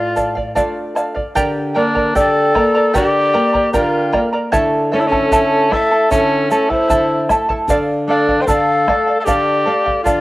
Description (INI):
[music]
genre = andean folk, Andean ensemble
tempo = 76 BPM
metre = 4/4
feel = straight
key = D minor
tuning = A4 = 440 Hz
[part]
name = warm cor anglais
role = melody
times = 0.0-10.2 s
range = C#4 to C5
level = -17 LUFS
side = equal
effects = cassette tape
[part]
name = breathy bright large pan pipes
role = second line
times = 0.0-10.2 s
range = A4 to G5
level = -20 LUFS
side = left 2 dB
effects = none
[part]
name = charango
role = accompaniment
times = 0.0-10.2 s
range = E4 to Bb5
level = -17 LUFS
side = right 1 dB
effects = none
[part]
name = nylon-string guitar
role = accompaniment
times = 0.0-10.2 s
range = A2 to F4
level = -23 LUFS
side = left 1 dB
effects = none
[part]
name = bombo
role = percussion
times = 0.2-10.2 s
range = none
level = -23 LUFS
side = equal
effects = none
[part]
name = egg shaker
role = percussion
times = 0.2-10.2 s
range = none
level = -36 LUFS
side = right 3 dB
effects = none
[sound]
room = light reverb, studio reverb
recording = home recording on cassette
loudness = -13 LUFS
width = side -18 dB against mid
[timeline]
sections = 0.0-1.4 A section; 1.4-10.2 B section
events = none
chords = 0.0 Dm; 1.4 Gm/D; 4.5 A/D; 7.7 Dm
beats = 0.57 | 1.36 2.15 2.94 3.74 | 4.53 5.32 6.11 6.90 | 7.69 8.48 9.27 10.06